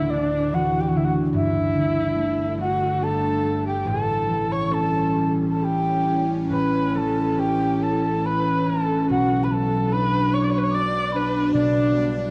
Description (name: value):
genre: celtic folk, Celtic slow air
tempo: 66-75 BPM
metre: 3/4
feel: rubato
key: unclear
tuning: A4 = 441 Hz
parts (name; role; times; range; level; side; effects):
- bright baroque flute; melody; 0.0-12.3 s; D5 to D6; -28 LUFS; equal; tape echo
- warm viola; second line; 0.0-12.3 s; D4 to D5; -31 LUFS; equal; tape echo
- concert harp; accompaniment; 0.0-12.3 s; D1 to B4; -25 LUFS; equal; none
- evolving wavetable pad; sustained chords; 0.0-12.3 s; D2 to D4; -32 LUFS; equal; phaser, built-in reverb
room: wet recital hall reverb, RT60 1.4 s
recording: dark, warm production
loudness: -22 LUFS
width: mono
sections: 0.0-12.3 A section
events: none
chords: 0.0 Dsus2; 1.3 Gsus2; 3.8 A7; 6.5 A; 9.1 Bm; 11.5 Em7/B